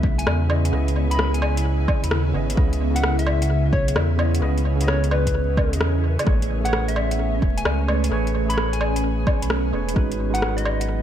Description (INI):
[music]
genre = future garage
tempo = 130 BPM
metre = 4/4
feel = swing 67% on 16ths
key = C# minor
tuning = A4 = 441 Hz
[part]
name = mellow tine electric piano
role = accompaniment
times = 0.0-11.0 s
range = C#3 to E5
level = -27 LUFS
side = right 3 dB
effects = overdrive, medium stereo tremolo, sidechain pumping, dub echo
[part]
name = ethereal airy pad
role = sustained chords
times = 0.0-11.0 s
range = C#3 to C#5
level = -29 LUFS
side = right 1 dB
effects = ensemble chorus, built-in reverb, phaser, sidechain pumping
[part]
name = warm sub bass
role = bass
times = 0.0-11.0 s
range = E1 to E2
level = -22 LUFS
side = equal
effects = sidechain pumping
[part]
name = electronic kick drum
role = drums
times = 0.0-10.1 s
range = none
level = -21 LUFS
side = equal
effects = overdrive
[part]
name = soft struck synth lead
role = melody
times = 0.2-11.0 s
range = B4 to B5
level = -29 LUFS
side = left 2 dB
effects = chorus, tremolo, tape echo
[part]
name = deep house drum kit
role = drums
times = 0.2-10.9 s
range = hi-hat, rim click, woodblock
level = -26 LUFS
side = left 1 dB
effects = overdrive, tape echo
[sound]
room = light reverb, digital ambience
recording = echo-heavy mix, vinyl crackle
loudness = -19 LUFS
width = side -10 dB against mid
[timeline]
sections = 0.0-11.0 A section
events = none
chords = 0.0 C#m9; 6.3 Amaj9; 10.0 G#m7